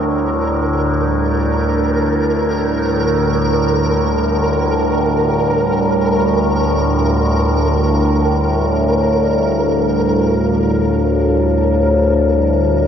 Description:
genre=dark ambient drone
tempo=free time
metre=none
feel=none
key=unclear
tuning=A4 = 440 Hz
part: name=deep dark ambient pad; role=sustained chords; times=0.0-12.9 s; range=D3 to A5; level=-21 LUFS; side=right 1 dB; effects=chorus, built-in reverb
part: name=overtone-sweeping drone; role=drone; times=0.0-12.9 s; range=D2 to A2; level=-15 LUFS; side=left 1 dB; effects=chorus, built-in reverb
part: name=flickering grainy texture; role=texture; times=0.0-12.9 s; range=Bb4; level=-20 LUFS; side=right 2 dB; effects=built-in reverb
room=wet huge ambient reverb, RT60 9.3 s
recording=none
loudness=-13 LUFS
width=side -8 dB against mid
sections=0.0-12.9 A section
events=fade-out on ambient pad 0.0-12.9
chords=0.0 Gm7/D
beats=free time

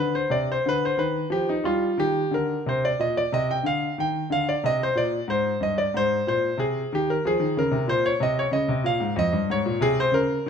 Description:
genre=classical, baroque-style suite movement for grand piano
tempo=92 BPM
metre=4/4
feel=rubato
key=unclear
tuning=A4 = 441 Hz
part: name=clear grand piano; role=solo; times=0.0-10.5 s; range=F2 to G5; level=-22 LUFS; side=equal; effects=none
room=moderate recital hall reverb, RT60 1.5 s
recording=close, detailed microphones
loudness=-22 LUFS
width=side -7 dB against mid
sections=0.0-10.5 A section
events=none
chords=0.0 G5; 2.0 Cm; 4.6 Ab; 7.2 N.C.; 8.5 Db; 9.8 Bbm9/C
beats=0.63 1.30 | 1.98 2.65 3.32 3.98 | 4.62 5.27 5.94 6.59 | 7.24 7.88 8.52 9.16 | 9.80 10.45

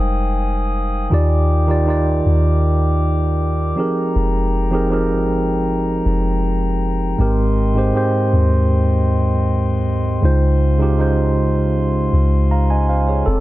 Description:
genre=contemporary R&B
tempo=79 BPM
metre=4/4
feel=straight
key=unclear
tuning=A4 = 440 Hz
part: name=mellow tine electric piano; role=accompaniment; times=0.0-13.4 s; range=Ab2 to Bb5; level=-18 LUFS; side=right 2 dB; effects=none
part: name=glass harmonica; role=sustained chords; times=0.0-13.4 s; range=Ab3 to Eb6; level=-26 LUFS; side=left 5 dB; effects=none
part: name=soft 808-style bass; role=bass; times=0.0-13.4 s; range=F1 to Eb2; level=-18 LUFS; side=equal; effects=none
room=small room ambience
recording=none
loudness=-15 LUFS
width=side -16 dB against mid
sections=0.0-1.1 A section; 1.1-13.3 B section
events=tine electric piano solo 0.0-1.1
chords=0.0 Fm9; 1.1 Ebmaj7; 3.8 Fm11; 7.2 Abmaj7; 10.2 Dbmaj7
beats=0.35 | 1.11 1.87 2.63 3.39 | 4.15 4.91 5.67 6.43 | 7.19 7.95 8.71 9.46 | 10.22 10.98 11.74 12.50 | 13.26

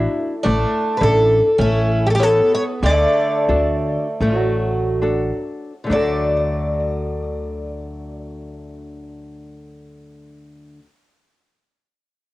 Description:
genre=fado-style ballad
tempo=66-110 BPM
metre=4/4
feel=rubato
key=D major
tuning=A4 = 442 Hz
part: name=picked twelve-string acoustic guitar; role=second line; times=0.0-10.9 s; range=F#3 to D4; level=-25 LUFS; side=right 3 dB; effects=cassette tape
part: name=nylon-string guitar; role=accompaniment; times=0.0-10.9 s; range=D3 to C#5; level=-24 LUFS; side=left 2 dB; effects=cassette tape
part: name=upright bass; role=bass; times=0.0-10.8 s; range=A1 to D2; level=-22 LUFS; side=equal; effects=none
part: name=picked twelve-string acoustic guitar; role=melody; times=1.0-10.9 s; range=E4 to D5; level=-19 LUFS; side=equal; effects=cassette tape, tape echo
room=light reverb, studio ambience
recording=home recording on cassette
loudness=-16 LUFS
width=side -17 dB against mid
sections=0.0-5.9 A section; 5.9-9.4 B section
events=slowing down 0.4-5.9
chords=0.4 Asus4; 1.6 A; 2.8 D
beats=| 0.45 1.00 1.59 2.20 | 2.83 3.49 4.21 5.02 | 5.90 6.79 7.64 8.52

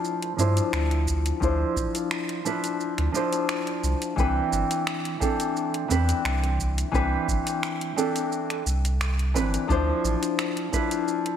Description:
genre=sunset chillout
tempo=87 BPM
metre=4/4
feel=straight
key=D dorian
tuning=A4 = 440 Hz
part: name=nylon-string guitar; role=accompaniment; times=0.0-11.4 s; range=E3 to C5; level=-26 LUFS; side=moving between left 4 dB and right 3 dB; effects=auto-pan, low-pass filter, tape echo
part: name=deep house drum kit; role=drums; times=0.0-11.4 s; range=finger snaps, hi-hat, shaker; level=-32 LUFS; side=right 2 dB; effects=overdrive
part: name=warm sub bass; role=bass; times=0.4-10.2 s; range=G1 to G2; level=-25 LUFS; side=equal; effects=none
part: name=electronic kick drum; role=drums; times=1.1-10.9 s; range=none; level=-29 LUFS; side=equal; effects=none
room=light reverb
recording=none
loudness=-23 LUFS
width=side -9 dB against mid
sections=0.0-11.4 A section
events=none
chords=0.0 Dm9; 4.2 Cmaj9; 9.7 Dm9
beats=0.04 0.73 | 1.42 2.11 2.80 3.49 | 4.18 4.87 5.56 6.25 | 6.94 7.63 8.31 9.01 | 9.70 10.38 11.07

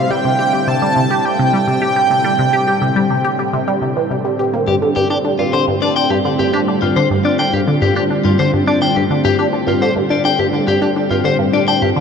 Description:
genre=ambient, sequencer-driven space music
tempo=105 BPM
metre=4/4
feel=straight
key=unclear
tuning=A4 = 440 Hz
part: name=pulse-width lead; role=melody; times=0.0-4.1 s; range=F5 to A5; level=-18 LUFS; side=right 1 dB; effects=chorus, ping-pong delay
part: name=lush unison pad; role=sustained chords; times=0.0-12.0 s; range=A2 to F4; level=-20 LUFS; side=equal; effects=chorus, phaser
part: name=resonant blip pluck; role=riff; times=0.0-12.0 s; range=G2 to G4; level=-17 LUFS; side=equal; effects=phaser, ping-pong delay
part: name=electric guitar at the edge of break-up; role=arpeggios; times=4.7-11.9 s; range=F4 to G5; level=-17 LUFS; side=left 3 dB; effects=auto-pan, ping-pong delay
room=wet huge ambient reverb, RT60 8.6 s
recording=in a vast, echoing space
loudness=-13 LUFS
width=side -6 dB against mid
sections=0.0-12.0 A section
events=fade-in on analog synth pad 0.0-12.0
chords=0.0 C; 4.7 G7sus2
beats=| 0.11 0.68 1.25 1.82 | 2.39 2.96 3.54 4.11 | 4.68 5.25 5.82 6.39 | 6.96 7.54 8.11 8.68 | 9.25 9.82 10.39 10.96 | 11.54

